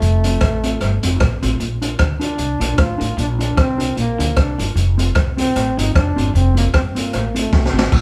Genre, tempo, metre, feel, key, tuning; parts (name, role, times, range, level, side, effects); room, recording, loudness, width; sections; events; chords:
ska; 152 BPM; 4/4; swing 55% on 8ths; A4 = 438 Hz
clear trombone; melody; 0.0-7.7 s; A3 to F4; -25 LUFS; equal
electric guitar at the edge of break-up; riff; 0.0-8.0 s; F2 to D3; -30 LUFS; equal
upright bass; bass; 0.0-8.0 s; F1 to D2; -22 LUFS; equal
crunchy breakbeat drum kit; drums; 0.0-8.0 s; crash cymbal, hi-hat, kick drum, rim click, snare drum; -21 LUFS; equal
mellow electric guitar; accompaniment; 0.2-7.9 s; C4 to Bb4; -28 LUFS; equal
moderate large studio reverb, RT60 1.3 s; band playing live in one room; -17 LUFS; mono
0.0-7.9 A section
drum fill 7.5-7.9
0.0 F; 1.6 Bb; 4.8 F